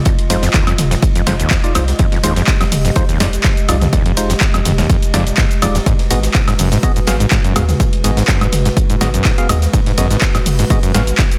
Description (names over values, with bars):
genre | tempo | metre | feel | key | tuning
acid house | 124 BPM | 4/4 | straight | unclear | A4 = 440 Hz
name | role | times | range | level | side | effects
dark analog pad | sustained chords | 0.0-11.4 s | Ab3 to Eb5 | -27 LUFS | equal | chorus, sidechain pumping
overdriven acid bass | riff | 0.1-11.2 s | Eb2 to Ab2 | -21 LUFS | equal | distortion, sidechain pumping, analog delay
deep reggae drum kit | drums | 0.1-11.3 s | hi-hat, ride cymbal, snare drum | -32 LUFS | equal | none
electronic kick drum | drums | 0.1-11.3 s | none | -17 LUFS | equal | none
punchy analog drum machine | drums | 0.1-11.4 s | handclaps, hi-hat, shaker, snare drum, toms, woodblock | -21 LUFS | equal | none
percussive organ stab | stabs | 0.3-11.0 s | Ab3 to F5 | -25 LUFS | equal | chorus, analog delay
saturated sub bass | bass | 0.3-11.1 s | Eb1 to Eb2 | -20 LUFS | equal | sidechain pumping
room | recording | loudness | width
little or no reverb | dense, heavily limited modern master | -14 LUFS | mono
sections
0.0-11.4 A section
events
none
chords
0.0 Fm7; 5.9 Abm7